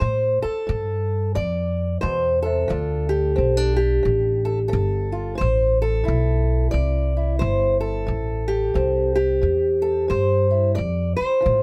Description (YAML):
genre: acoustic country blues, solo or duo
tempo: 89 BPM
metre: 4/4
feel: swing 63% on 8ths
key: A minor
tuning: A4 = 442 Hz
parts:
  - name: fingerpicked old ladder-braced acoustic guitar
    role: melody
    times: 0.0-11.6 s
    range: A2 to D5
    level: -24 LUFS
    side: equal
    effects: none
  - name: upright bass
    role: bass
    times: 0.0-11.6 s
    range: G1 to A2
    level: -25 LUFS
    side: equal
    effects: none
room: little or no reverb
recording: close, detailed microphones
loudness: -21 LUFS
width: mono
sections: 0.0-11.6 A section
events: none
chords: 0.0 Am; 2.7 Dm; 5.4 Am; 10.8 Dm